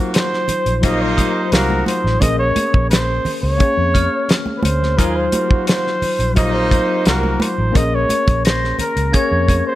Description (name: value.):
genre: lush 1970s-style soul.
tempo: 87 BPM.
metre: 4/4.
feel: straight.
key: Eb dorian.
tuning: A4 = 440 Hz.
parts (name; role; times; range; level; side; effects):
tine electric piano; accompaniment; 0.0-9.8 s; Gb3 to Db5; -22 LUFS; left 3 dB; medium stereo tremolo.
mellow horn section; stabs; 0.0-7.5 s; C3 to Ab4; -23 LUFS; right 1 dB; none.
breathy flugelhorn; melody; 0.1-9.8 s; Bb4 to Eb5; -20 LUFS; right 1 dB; slapback echo.
damped 70s drum kit; drums; 0.1-9.7 s; hi-hat, kick drum, snare drum; -17 LUFS; equal; none.
vintage muted fingered electric bass; bass; 0.5-9.6 s; A1 to F2; -20 LUFS; equal; none.
congas; percussion; 0.5-9.6 s; none; -25 LUFS; right 2 dB; none.
glockenspiel with brass mallets; texture; 1.2-9.8 s; Eb6 to Bb6; -30 LUFS; left 2 dB; none.
room: light reverb.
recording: none.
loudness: -14 LUFS.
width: side -15 dB against mid.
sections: 0.0-9.8 A section.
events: none.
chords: 0.0 Ebm69; 2.2 Bbm7; 5.0 Ebm69; 7.8 Bbm7.